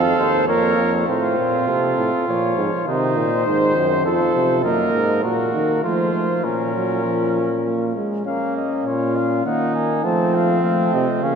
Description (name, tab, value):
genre	classical, imitative canzona for brass ensemble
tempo	100 BPM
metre	3/4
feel	straight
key	Bb minor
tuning	A4 = 436 Hz
part	clear flugelhorn	second line	0.0-11.4 s	Bb3 to C5	-23 LUFS	right 4 dB	none
part	warm trombone	accompaniment	0.0-11.4 s	Eb3 to Db4	-23 LUFS	right 1 dB	none
part	mellow euphonium	bass	0.0-11.4 s	Eb2 to F3	-22 LUFS	right 1 dB	none
part	mellow trumpet	melody	0.2-11.4 s	A4 to A5	-24 LUFS	left 6 dB	none
room	wet cathedral reverb, RT60 5.1 s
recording	none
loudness	-17 LUFS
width	side -6 dB against mid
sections	0.0-1.1 A section; 1.1-8.3 B section; 8.3-11.4 A section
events	none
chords	0.5 Bbm/F; 1.1 F/A; 2.3 Bbm; 2.9 Cdim; 4.1 F; 4.6 Ebm/Gb; 5.8 F; 6.4 Bbm; 9.5 Ebmadd11; 10.1 F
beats	0.47 | 1.08 1.68 2.28 | 2.87 3.46 4.05 | 4.64 5.23 5.83 | 6.44 7.05 7.66 | 8.26 8.86 9.46 | 10.05 10.64 11.23